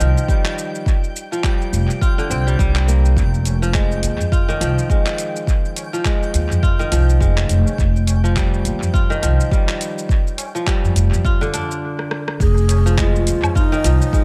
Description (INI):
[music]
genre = organic downtempo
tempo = 104 BPM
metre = 4/4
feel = swing 58% on 16ths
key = F dorian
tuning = A4 = 436 Hz
[part]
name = kora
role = arpeggios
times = 0.0-14.2 s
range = D3 to F4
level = -26 LUFS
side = equal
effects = low-pass filter, analog delay
[part]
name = upright bass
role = bass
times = 0.0-14.0 s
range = F1 to Eb2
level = -18 LUFS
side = equal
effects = sidechain pumping
[part]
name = deep house drum kit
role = drums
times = 0.0-14.2 s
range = handclaps, hi-hat, rim click, shaker, woodblock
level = -30 LUFS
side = equal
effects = overdrive, analog delay
[part]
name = twinkling granular texture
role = texture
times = 0.0-11.8 s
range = G5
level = -39 LUFS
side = equal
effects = built-in reverb
[part]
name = electronic kick drum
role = drums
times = 0.3-14.2 s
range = none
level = -20 LUFS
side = equal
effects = overdrive
[part]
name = tabla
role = percussion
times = 3.5-14.1 s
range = none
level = -27 LUFS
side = equal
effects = analog delay
[part]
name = breathy low ney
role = melody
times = 12.4-14.2 s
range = Eb4 to Ab4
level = -25 LUFS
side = equal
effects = analog delay
[sound]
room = light reverb, studio reverb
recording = echo-heavy mix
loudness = -18 LUFS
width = mono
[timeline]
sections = 0.0-12.4 A section; 12.4-14.2 B section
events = stop 11.8-12.4; drum fill 12.0-12.4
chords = 0.0 Eb; 0.9 Csus2/F; 3.2 Fm; 7.8 Eb/F; 10.1 Fsus2; 12.4 Fm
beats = 0.28 | 0.86 1.44 2.02 2.59 | 3.17 3.75 4.32 4.90 | 5.48 6.05 6.63 7.21 | 7.79 8.36 8.94 9.52 | 10.09 10.67 11.25 11.82 | 12.40 12.98 13.55 14.13